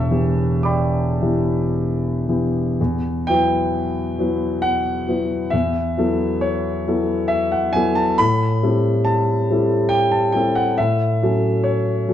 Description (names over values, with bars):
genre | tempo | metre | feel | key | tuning
classical, impressionist solo piano | 54-71 BPM | 3/4 | rubato | E dorian | A4 = 445 Hz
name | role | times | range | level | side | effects
warm concert grand piano | solo | 0.0-12.1 s | E1 to E6 | -17 LUFS | equal | none
room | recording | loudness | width
moderate recital hall reverb, RT60 1.4 s | dark, warm production | -17 LUFS | side -10 dB against mid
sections
0.0-2.8 A section; 2.8-12.1 B section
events
none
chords
0.0 Em7; 2.8 Emadd9; 5.5 F#m7/E; 8.2 Am9; 10.8 F#m7/A